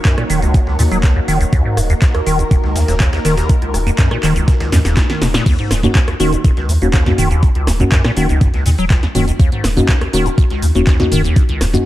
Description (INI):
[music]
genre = acid house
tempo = 122 BPM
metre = 4/4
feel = straight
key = Eb minor pentatonic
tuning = A4 = 440 Hz
[part]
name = string machine, full ensemble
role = sustained chords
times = 0.0-5.4 s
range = Bb3 to Db5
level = -23 LUFS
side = equal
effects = phaser, ensemble chorus, sidechain pumping
[part]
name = liquid acid bass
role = riff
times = 0.1-11.8 s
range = Eb1 to Gb3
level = -17 LUFS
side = equal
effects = phaser, wide subtle chorus, sidechain pumping, tape echo
[part]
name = breakbeat sampler-style drum kit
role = drums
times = 0.1-11.7 s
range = hi-hat, snare drum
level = -34 LUFS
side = equal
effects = none
[part]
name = electronic kick drum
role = drums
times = 0.1-11.5 s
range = none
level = -13 LUFS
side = equal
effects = none
[part]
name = punchy analog drum machine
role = drums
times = 0.1-11.8 s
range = cabasa, crash cymbal, handclaps, hi-hat, rim click, snare drum, toms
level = -21 LUFS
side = equal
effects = none
[part]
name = warm sub bass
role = bass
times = 0.3-11.8 s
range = Eb1 to Eb2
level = -18 LUFS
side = equal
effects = tube saturation, sidechain pumping
[part]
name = deep mellow chord stab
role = stabs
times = 5.8-11.8 s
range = Bb3 to Gb4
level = -19 LUFS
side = left 1 dB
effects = chorus, tape echo
[sound]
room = light reverb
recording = dark, warm production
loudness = -12 LUFS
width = side -15 dB against mid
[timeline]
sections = 0.0-5.5 A section; 5.5-11.9 B section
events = drum fill 4.7-5.5; drop 5.5-11.9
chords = 0.0 Ebm7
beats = 0.05 0.54 1.03 | 1.53 2.02 2.51 3.00 | 3.49 3.99 4.48 4.97 | 5.46 5.95 6.45 6.94 | 7.43 7.92 8.41 8.90 | 9.40 9.89 10.38 10.87 | 11.36